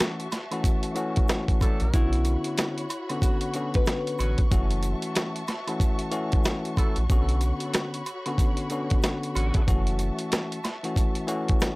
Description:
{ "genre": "hip hop, boom-bap hip-hop", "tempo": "93 BPM", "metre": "4/4", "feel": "swing 60% on 16ths", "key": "B minor", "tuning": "A4 = 440 Hz", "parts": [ { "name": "bell-like tine electric piano", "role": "accompaniment", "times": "0.0-11.8 s", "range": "D3 to F#4", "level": "-30 LUFS", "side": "left 2 dB", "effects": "cassette tape, high-pass filter, low-pass filter" }, { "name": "warm studio string section", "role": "sustained chords", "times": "0.0-11.8 s", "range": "F#4 to C#6", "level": "-38 LUFS", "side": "left 1 dB", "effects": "high-pass filter, low-pass filter" }, { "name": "dusty soul sampler-style drum kit", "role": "drums", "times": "0.0-11.8 s", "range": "hi-hat, kick drum, snare drum", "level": "-24 LUFS", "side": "equal", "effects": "overdrive" }, { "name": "egg shaker and woodblock", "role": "percussion", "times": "0.0-11.8 s", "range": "none", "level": "-39 LUFS", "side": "right 3 dB", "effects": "none" }, { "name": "warm horn section", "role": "stabs", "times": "1.6-9.6 s", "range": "D3 to A4", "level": "-39 LUFS", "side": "right 1 dB", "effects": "high-pass filter, low-pass filter, tape echo" }, { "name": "warm sub bass", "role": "bass", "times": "1.8-10.1 s", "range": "F#1 to B1", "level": "-25 LUFS", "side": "equal", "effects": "tube saturation" }, { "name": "nylon-string guitar", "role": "melody", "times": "1.9-4.5 s", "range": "E4 to B4", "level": "-33 LUFS", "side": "left 2 dB", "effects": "high-pass filter, low-pass filter, tape echo" } ], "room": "little or no reverb", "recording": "dry, gritty hardware recording, transformer saturation", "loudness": "-23 LUFS", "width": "side -24 dB against mid", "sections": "0.0-11.8 A section", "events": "none", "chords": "0.0 F#m7; 1.9 Bmadd9; 4.5 F#m7; 7.1 Bmadd9; 9.7 F#m7" }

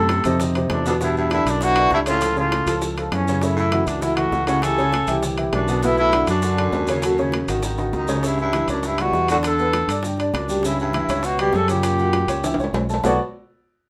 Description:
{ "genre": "Afro-Cuban jazz", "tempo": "200 BPM", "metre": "4/4", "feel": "straight", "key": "unclear", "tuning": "A4 = 440 Hz", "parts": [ { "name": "warm trumpet", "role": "melody", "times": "0.0-13.2 s", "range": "C#4 to A4", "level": "-25 LUFS", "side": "equal", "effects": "none" }, { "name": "clear baritone saxophone", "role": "second line", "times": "0.0-13.2 s", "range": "E2 to D3", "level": "-28 LUFS", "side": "equal", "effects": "none" }, { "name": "warm baby grand piano", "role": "accompaniment", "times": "0.0-13.2 s", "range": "A2 to F#5", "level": "-26 LUFS", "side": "equal", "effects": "none" }, { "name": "modern bright fingered electric bass", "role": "bass", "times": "0.0-13.2 s", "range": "G#1 to G2", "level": "-28 LUFS", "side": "equal", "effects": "none" }, { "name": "bongos", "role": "percussion", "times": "0.1-13.1 s", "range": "none", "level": "-35 LUFS", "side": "equal", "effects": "none" }, { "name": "maracas", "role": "percussion", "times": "0.1-13.1 s", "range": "none", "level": "-39 LUFS", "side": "equal", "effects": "none" }, { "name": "timbales", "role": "percussion", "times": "0.1-13.1 s", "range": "none", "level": "-32 LUFS", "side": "equal", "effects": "none" } ], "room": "moderate studio reverb, RT60 0.5 s", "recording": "none", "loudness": "-20 LUFS", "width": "mono", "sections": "0.0-8.2 A section; 8.2-13.0 B section", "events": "drum fill 7.8-8.2, 12.4-13.0", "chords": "0.4 F5; 1.0 E5; 2.2 C#aug; 3.4 F#m7; 4.6 C#dim; 5.2 C; 5.8 Bm9; 7.0 D#m7b5; 7.6 G#5; 8.2 C#m7b5; 9.4 Em11; 10.6 C#dim; 11.8 F#7b9; 13.0 Bm9" }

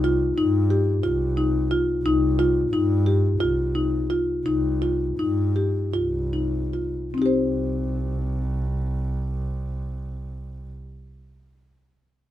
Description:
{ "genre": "contemporary instrumental, contemporary", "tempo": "147-180 BPM (eighths)", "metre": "7/8", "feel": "straight", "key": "C minor", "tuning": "A4 = 440 Hz", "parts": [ { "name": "marimba with soft mallets", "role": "arpeggios", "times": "0.0-11.5 s", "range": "C4 to C5", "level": "-23 LUFS", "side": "left 2 dB", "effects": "none" }, { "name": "warm double bass", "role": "bass", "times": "0.0-10.7 s", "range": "C2 to G2", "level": "-25 LUFS", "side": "right 2 dB", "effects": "none" } ], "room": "little or no reverb", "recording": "none", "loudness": "-21 LUFS", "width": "side -12 dB against mid", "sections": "0.0-7.1 A section; 7.1-10.0 B section", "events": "slowing down 2.1-7.1", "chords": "0.0 Cm" }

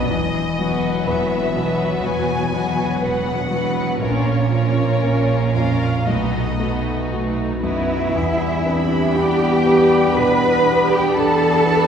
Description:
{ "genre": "cinematic, emotional film score for orchestra", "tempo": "60 BPM", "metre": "4/4", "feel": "rubato", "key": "E minor from 8.1 s", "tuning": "A4 = 440 Hz", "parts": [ { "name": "rich studio violin section", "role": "melody", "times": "0.0-11.9 s", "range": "Db5 to B5", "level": "-27 LUFS", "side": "left 2 dB", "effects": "none" }, { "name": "rich studio violin section", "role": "second line", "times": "0.0-11.9 s", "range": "D#4 to B5", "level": "-27 LUFS", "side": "left 2 dB", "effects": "none" }, { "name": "clear grand piano", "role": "accompaniment", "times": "0.0-11.9 s", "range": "Bb1 to B4", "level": "-24 LUFS", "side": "left 2 dB", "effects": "none" }, { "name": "rich studio viola section", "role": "accompaniment", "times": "0.0-11.9 s", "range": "F#3 to G4", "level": "-25 LUFS", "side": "right 2 dB", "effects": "none" }, { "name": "rich studio double bass section", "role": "bass", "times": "0.1-11.9 s", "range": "E1 to E2", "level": "-23 LUFS", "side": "right 2 dB", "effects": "none" }, { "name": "warm studio cello section", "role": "bass", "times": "0.1-11.9 s", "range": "E2 to B4", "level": "-22 LUFS", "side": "right 1 dB", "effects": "none" }, { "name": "mellow hollow silver concert flute", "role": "second line", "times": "7.6-11.9 s", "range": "Fb5 to B5", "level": "-25 LUFS", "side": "left 1 dB", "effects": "none" }, { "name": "mellow clarinet", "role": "second line", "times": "8.1-11.9 s", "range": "B3 to C4", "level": "-26 LUFS", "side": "left 1 dB", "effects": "none" }, { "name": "dark French horn section", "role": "sustained chords", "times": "8.1-11.9 s", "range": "G3 to D4", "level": "-26 LUFS", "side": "left 2 dB", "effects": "none" } ], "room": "wet scoring stage reverb, RT60 1.7 s", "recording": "heard from further back in the room", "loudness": "-16 LUFS", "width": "side -7 dB against mid", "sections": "0.0-8.1 A section; 8.1-11.9 A section", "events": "none", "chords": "0.1 Esus2; 4.0 Bbm; 6.1 B7; 8.1 Em7" }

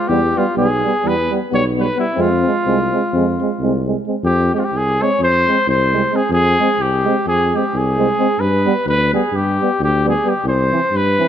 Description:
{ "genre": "balkan folk, Balkan brass band", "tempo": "260 BPM (eighths)", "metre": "9/8", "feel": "straight", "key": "F hungarian minor", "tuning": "A4 = 441 Hz", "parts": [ { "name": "dark trumpet", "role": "melody", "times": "0.0-11.3 s", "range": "E4 to Db5", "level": "-17 LUFS", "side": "equal", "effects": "none" }, { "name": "warm euphonium", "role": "accompaniment", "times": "0.1-11.3 s", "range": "B3 to C4", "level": "-23 LUFS", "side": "left 5 dB", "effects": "none" }, { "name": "warm euphonium", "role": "accompaniment", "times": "0.1-11.3 s", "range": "E3 to Ab3", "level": "-22 LUFS", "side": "right 8 dB", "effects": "none" }, { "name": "mellow tuba", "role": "bass", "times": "0.1-11.2 s", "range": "B1 to G2", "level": "-19 LUFS", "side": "left 1 dB", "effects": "none" } ], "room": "light reverb", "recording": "none", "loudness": "-14 LUFS", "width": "side -9 dB against mid", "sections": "0.0-4.3 A section; 4.3-11.3 B section", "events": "none", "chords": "0.1 Em; 2.2 Fm; 8.4 G; 10.4 C" }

